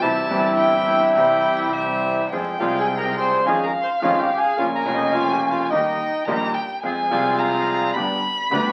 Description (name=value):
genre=tango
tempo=106 BPM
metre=4/4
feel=rubato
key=F minor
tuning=A4 = 437 Hz
part: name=bandoneon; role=melody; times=0.0-8.7 s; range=Eb4 to Db6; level=-23 LUFS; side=equal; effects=none
part: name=warm violin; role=second line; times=0.0-8.7 s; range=E5 to B5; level=-26 LUFS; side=equal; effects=none
part: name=bright concert grand piano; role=accompaniment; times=0.0-8.7 s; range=F1 to Ab4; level=-29 LUFS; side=equal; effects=none
part: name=bandoneon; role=stabs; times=0.0-8.7 s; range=Bb3 to Ab4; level=-28 LUFS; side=equal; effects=none
part: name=dark double bass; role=bass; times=0.0-8.7 s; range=F1 to F2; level=-37 LUFS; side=equal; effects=none
room=wet studio reverb, RT60 0.9 s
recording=very old 78 rpm record, vinyl crackle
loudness=-20 LUFS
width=mono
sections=0.0-2.3 A section; 2.3-8.7 B section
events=none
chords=0.0 C; 2.3 Fm; 3.5 Dbadd9/F; 4.6 Bbm; 5.7 Eb; 6.8 Fm; 8.0 G